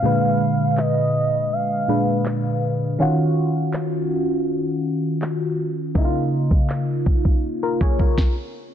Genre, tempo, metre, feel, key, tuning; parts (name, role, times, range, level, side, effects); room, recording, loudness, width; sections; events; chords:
contemporary R&B; 81 BPM; 4/4; straight; Bb minor; A4 = 440 Hz
gliding portamento lead; melody; 0.0-2.6 s; Eb5 to F5; -24 LUFS; right 2 dB; chorus, ping-pong delay
FM electric piano; accompaniment; 0.0-8.4 s; Bb2 to Db5; -20 LUFS; equal; chorus, phaser
smooth R&B drum kit; drums; 0.8-8.4 s; handclaps, kick drum, snare drum; -19 LUFS; equal
light reverb, digital ambience; dense, heavily limited modern master, low-pass filter; -18 LUFS; side -9 dB against mid
0.0-8.7 A section
filter sweep 0.0-8.7; stop 8.2-8.7
0.0 Bb7b9; 3.0 Ebm9; 6.0 Db69